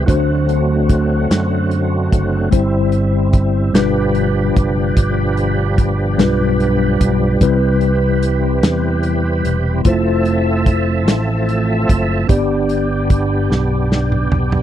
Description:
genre	slow gospel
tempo	49 BPM (dotted quarters)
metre	6/8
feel	straight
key	C major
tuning	A4 = 440 Hz
part	mellow tine electric piano	accompaniment	0.0-14.6 s	G2 to D5	-18 LUFS	left 2 dB	medium stereo tremolo
part	percussive tonewheel organ	sustained chords	0.0-14.6 s	D3 to E5	-21 LUFS	right 3 dB	fast rotary speaker, overdrive, chorus vibrato
part	fingered electric bass	bass	0.0-14.6 s	E1 to F#2	-18 LUFS	equal	none
part	warm soul drum kit	drums	0.1-14.6 s	hi-hat, kick drum, snare drum, toms	-14 LUFS	equal	none
room	studio reverb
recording	dry, close 1970s-style studio recording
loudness	-13 LUFS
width	side -11 dB against mid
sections	0.0-14.6 A section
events	drum fill 13.5-14.6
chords	0.1 D7; 2.5 C/G; 3.7 G7; 7.4 Cmaj7; 9.9 Fmaj7; 12.3 G

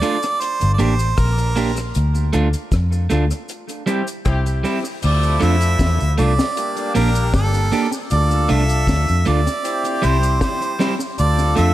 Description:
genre	roots reggae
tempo	78 BPM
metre	4/4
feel	straight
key	D minor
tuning	A4 = 441 Hz
part	clear harmonica	melody	0.0-11.7 s	A4 to E5	-22 LUFS	right 3 dB	analog delay
part	electric guitar at the edge of break-up	accompaniment	0.0-11.7 s	G3 to G4	-23 LUFS	right 3 dB	analog delay
part	deep reggae drum kit	drums	0.0-11.7 s	crash cymbal, hi-hat, kick drum, rim click, snare drum	-25 LUFS	left 1 dB	analog delay
part	cabasa	percussion	0.0-11.7 s	none	-37 LUFS	equal	none
part	vintage muted fingered electric bass	bass	0.6-11.7 s	G1 to F2	-17 LUFS	equal	none
part	clear horn section	second line	3.9-11.7 s	F3 to A4	-26 LUFS	left 3 dB	analog delay
room	small room reverb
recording	echo-heavy mix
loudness	-16 LUFS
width	side -14 dB against mid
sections	0.0-5.0 A section; 5.0-11.7 B section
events	band accent 1.9-5.0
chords	0.4 Gm; 1.9 Dm; 3.5 C; 5.0 Dm; 6.6 Gm; 8.1 Dm; 9.6 C; 11.2 Dm

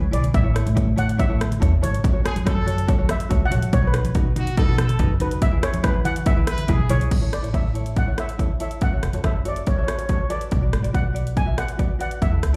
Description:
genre	calypso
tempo	142 BPM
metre	4/4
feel	straight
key	A major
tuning	A4 = 440 Hz
part	steel pan	melody	0.0-12.6 s	B4 to G#5	-31 LUFS	equal	slapback echo
part	tenor ukulele	accompaniment	0.0-12.6 s	D#4 to E5	-34 LUFS	equal	slapback echo
part	upright bass	bass	0.0-12.6 s	E1 to E3	-25 LUFS	equal	none
part	congas	percussion	0.0-7.1 s	none	-33 LUFS	equal	slapback echo
part	punchy analog drum machine	drums	0.1-12.5 s	crash cymbal, hi-hat, kick drum, rim click	-24 LUFS	equal	overdrive
part	clear horn section	second line	2.3-7.1 s	F#4 to B4	-33 LUFS	equal	slapback echo
room	small room ambience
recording	live gig heard through the venue's PA, club reverb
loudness	-21 LUFS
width	mono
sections	0.0-7.1 A section; 7.1-12.6 B section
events	drum fill 0.0-0.3, 6.8-7.1; steel pan solo 0.0-7.1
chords	0.3 A; 2.0 F#m; 3.7 B; 5.4 E; 7.1 A; 8.8 F#m; 10.5 Bm

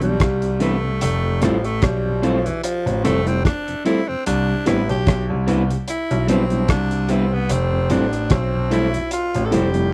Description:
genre	lovers rock reggae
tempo	74 BPM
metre	4/4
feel	swing 55% on 16ths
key	unclear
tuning	A4 = 441 Hz
part	raspy tenor saxophone	melody	0.0-9.9 s	E3 to A4	-26 LUFS	equal	tape echo
part	mellow tine electric piano	accompaniment	0.0-9.9 s	E3 to E4	-25 LUFS	equal	slapback echo
part	tonewheel organ	accompaniment	0.0-9.8 s	F2 to E4	-32 LUFS	equal	none
part	clear concert grand piano	bass	0.0-9.9 s	F1 to C2	-24 LUFS	equal	none
part	cloth-damped thuddy drum kit	drums	0.0-9.9 s	hi-hat, kick drum, rim click	-23 LUFS	equal	none
part	electric guitar through a small old amp	stabs	0.6-9.7 s	G3 to C5	-26 LUFS	equal	warbly pitch drift
room	light reverb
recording	dry, close 1970s-style studio recording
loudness	-20 LUFS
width	mono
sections	0.0-9.9 A section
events	tenor saxophone solo 0.0-9.9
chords	0.0 Cmaj7; 1.0 Fmaj7; 4.3 Cmaj7; 7.5 Fmaj7

